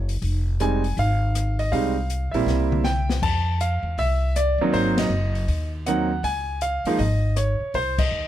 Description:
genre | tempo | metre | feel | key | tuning
jazz piano trio | 159 BPM | 4/4 | swing 64% on 8ths | F minor | A4 = 440 Hz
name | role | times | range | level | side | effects
warm concert grand piano | melody | 0.0-8.3 s | F3 to A5 | -24 LUFS | right 2 dB | none
upright bass | bass | 0.0-8.3 s | F1 to F2 | -24 LUFS | equal | none
open jazz drum kit | drums | 0.1-8.0 s | crash cymbal, hi-hat, kick drum, ride cymbal, rim click, snare drum, toms | -29 LUFS | left 3 dB | none
room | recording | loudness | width
little or no reverb | close, detailed microphones | -20 LUFS | side -12 dB against mid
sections
0.0-3.2 A section; 3.2-8.3 B section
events
drum fill 2.5-3.2; band accent 4.9, 7.9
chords
0.2 Fm7; 2.5 C7; 3.2 Fmaj7; 4.7 Ab7; 6.2 Db; 7.7 Cm

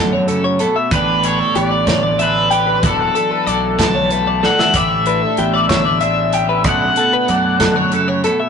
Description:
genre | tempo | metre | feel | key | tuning
math rock and midwest emo | 63 BPM (dotted quarters) | 6/8 | straight | unclear | A4 = 441 Hz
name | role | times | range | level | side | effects
twelve-string electric guitar | accompaniment | 0.0-8.5 s | E2 to G4 | -21 LUFS | right 4 dB | spring reverb
twelve-string electric guitar | arpeggios | 0.0-8.5 s | G4 to G5 | -19 LUFS | left 3 dB | none
fuzz fingered electric bass | bass | 0.0-8.3 s | E1 to F#2 | -21 LUFS | equal | overdrive
modern studio drum kit | drums | 0.3-8.4 s | hi-hat, kick drum, snare drum | -20 LUFS | equal | none
raw garage guitar | melody | 0.9-8.2 s | A4 to A5 | -17 LUFS | left 2 dB | overdrive, spring reverb
room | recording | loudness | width
moderate small room reverb, RT60 0.6 s | rough rehearsal-room recording, tube saturation, nothing above 11.0 kHz | -13 LUFS | side -6 dB against mid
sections
0.0-8.5 A section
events
drum fill 4.4-4.7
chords
0.0 Bm11; 0.9 A9sus4; 2.8 E9sus4; 4.7 A9sus4; 6.7 Bm11

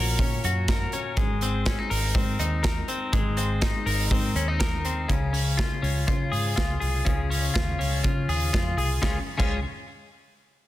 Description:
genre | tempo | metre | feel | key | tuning
jangly indie pop | 122 BPM | 4/4 | straight | Db major | A4 = 438 Hz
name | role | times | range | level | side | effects
twelve-string electric guitar | arpeggios | 0.0-9.6 s | Bb2 to Bb4 | -28 LUFS | left 3 dB | digital delay
vintage muted fingered electric bass | bass | 0.0-9.6 s | Ab1 to Db3 | -28 LUFS | equal | none
modern studio drum kit | drums | 0.2-9.5 s | crash cymbal, hi-hat, kick drum, snare drum | -27 LUFS | equal | none
room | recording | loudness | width
light reverb | dense, heavily limited modern master | -23 LUFS | side -14 dB against mid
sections
0.0-5.1 A section; 5.1-9.0 B section; 9.0-10.7 C section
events
none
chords
0.0 Gb/Bb; 1.2 Abadd9; 5.1 Db

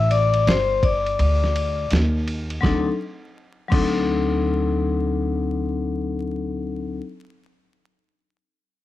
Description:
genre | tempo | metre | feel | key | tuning
hip hop, jazz-hop | 83 BPM | 4/4 | swing 64% on 16ths | unclear | A4 = 440 Hz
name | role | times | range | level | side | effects
vibraphone with hard mallets | accompaniment | 0.0-7.0 s | F#3 to D6 | -22 LUFS | left 4 dB | plate reverb
upright bass | bass | 0.0-7.0 s | G1 to Eb2 | -23 LUFS | equal | none
dusty soul sampler-style drum kit | drums | 0.1-4.0 s | crash cymbal, hi-hat, kick drum, ride cymbal, snare drum | -25 LUFS | right 1 dB | overdrive, cassette tape
room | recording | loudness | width
light reverb | home recording on cassette, vinyl crackle | -20 LUFS | side -14 dB against mid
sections
0.0-2.6 A section; 2.6-5.5 B section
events
vibraphone solo 0.0-2.6; break 1.2-2.6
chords
0.0 Am7; 1.2 N.C.; 2.6 D7b9

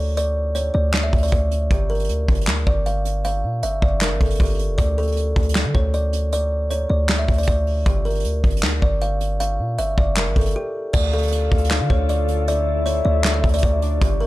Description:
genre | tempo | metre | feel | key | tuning
hip hop, trap | 156 BPM | 4/4 | half-time | D harmonic minor | A4 = 440 Hz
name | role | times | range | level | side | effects
kalimba | melody | 0.0-14.3 s | G4 to F5 | -24 LUFS | right 1 dB | none
hard-hitting 808-style bass | bass | 0.0-14.3 s | F1 to D3 | -21 LUFS | equal | none
soft brush drum kit | drums | 0.2-14.3 s | crash cymbal, handclaps, hi-hat, kick drum, snare drum | -21 LUFS | equal | none
glassy FM pad | sustained chords | 11.4-14.3 s | D3 to Bb4 | -30 LUFS | equal | ensemble chorus, built-in reverb
soft octave-layered synth lead | second line | 11.1-14.3 s | D5 to F5 | -28 LUFS | left 7 dB | chorus, tape echo
room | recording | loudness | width
small room ambience | none | -18 LUFS | side -17 dB against mid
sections
0.0-10.9 A section; 10.9-14.3 B section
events
break 10.6-10.9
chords
0.0 D5; 1.7 Gm7; 4.8 D5; 7.9 Gm7; 10.9 Dm

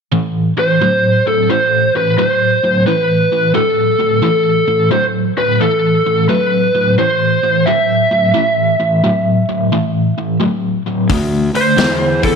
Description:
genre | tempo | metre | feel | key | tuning
blues rock power trio and southern rock | 88 BPM | 4/4 | swing 66% on 8ths | A minor | A4 = 440 Hz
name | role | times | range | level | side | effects
crunchy overdriven guitar | riff | 0.1-12.4 s | A2 to B3 | -15 LUFS | equal | tremolo
lead guitar through a small cranked amp | melody | 0.6-12.4 s | A4 to E5 | -13 LUFS | right 1 dB | overdrive
fuzz fingered electric bass | bass | 11.1-12.4 s | D2 to E2 | -19 LUFS | equal | overdrive
big rock drum kit | drums | 11.1-12.3 s | hi-hat, kick drum, snare drum | -18 LUFS | left 4 dB | none
room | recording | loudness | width
moderate echo chamber reverb, RT60 2.0 s | 1960s-style stereo | -11 LUFS | side -6 dB against mid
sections
0.1-12.4 A section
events
none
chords
0.1 Am; 11.1 D7(no3)

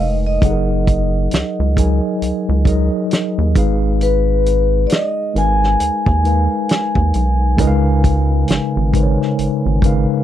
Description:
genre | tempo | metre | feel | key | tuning
R&B, neo-soul | 67 BPM | 4/4 | swing 60% on 16ths | G# dorian | A4 = 440 Hz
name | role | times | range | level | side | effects
vibraphone with soft mallets | melody | 0.0-10.2 s | B4 to G#5 | -21 LUFS | left 2 dB | none
mellow tine electric piano | accompaniment | 0.0-10.2 s | C#3 to G#5 | -19 LUFS | left 1 dB | medium stereo tremolo
rubbery square bass | bass | 0.0-10.1 s | E#1 to D#2 | -16 LUFS | equal | none
warm soul drum kit | drums | 0.4-10.1 s | hi-hat, kick drum, snare drum | -17 LUFS | equal | none
room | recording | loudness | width
little or no reverb | dry, close 1970s-style studio recording | -14 LUFS | side -11 dB against mid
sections
0.0-10.2 A section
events
none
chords
0.4 F#6; 3.6 G#m69; 7.6 C#13

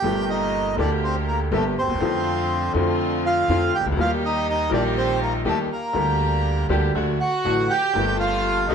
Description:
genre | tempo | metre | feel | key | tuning
tango | 121 BPM | 4/4 | rubato | G minor | A4 = 440 Hz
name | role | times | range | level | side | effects
bandoneon | melody | 0.0-8.7 s | A3 to G5 | -23 LUFS | right 2 dB | none
bright upright piano | accompaniment | 0.0-8.7 s | G1 to G4 | -24 LUFS | left 3 dB | none
rich chamber string section | stabs | 0.0-8.7 s | A3 to A4 | -30 LUFS | right 3 dB | tape echo
upright bass | bass | 0.0-8.7 s | G1 to F2 | -27 LUFS | right 1 dB | none
warm studio violin section | second line | 7.2-8.7 s | Eb4 to G4 | -28 LUFS | left 3 dB | none
room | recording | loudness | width
moderate large studio reverb, RT60 1.2 s | none | -19 LUFS | side -7 dB against mid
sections
0.0-8.7 A section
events
none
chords
0.0 Gmadd9; 2.0 Dm7/F; 4.0 Eb; 6.0 Gm/D; 6.9 D; 8.0 Gmadd9

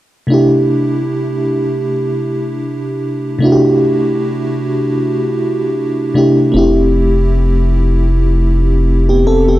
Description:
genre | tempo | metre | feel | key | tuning
R&B | 77 BPM | 4/4 | swing 56% on 16ths | C major | A4 = 441 Hz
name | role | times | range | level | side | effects
FM electric piano with soft pad layer | accompaniment | 0.3-9.6 s | C3 to A4 | -13 LUFS | equal | chorus, tremolo
round analog bass | bass | 6.5-9.6 s | F1 | -12 LUFS | equal | none
room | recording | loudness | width
moderate echo chamber reverb, RT60 1.3 s, digital ambience | none | -12 LUFS | side -15 dB against mid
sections
0.3-9.6 A section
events
none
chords
0.3 C69; 6.5 Fmaj9

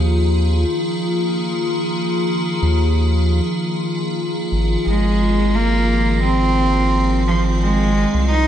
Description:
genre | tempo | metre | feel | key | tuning
IDM | 87 BPM | 4/4 | straight | Ab major | A4 = 439 Hz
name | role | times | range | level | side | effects
icy glass pad | sustained chords | 0.0-8.5 s | Eb3 to Ab4 | -20 LUFS | left 1 dB | chorus, built-in reverb
round analog bass | bass | 0.0-8.5 s | Ab1 to Eb2 | -17 LUFS | equal | none
clear cello | melody | 4.9-8.5 s | F3 to Eb4 | -18 LUFS | right 1 dB | dub echo
room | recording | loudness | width
light reverb, small room ambience | echo-heavy mix | -16 LUFS | side -10 dB against mid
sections
0.0-8.5 A section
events
none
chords
0.0 Ab6

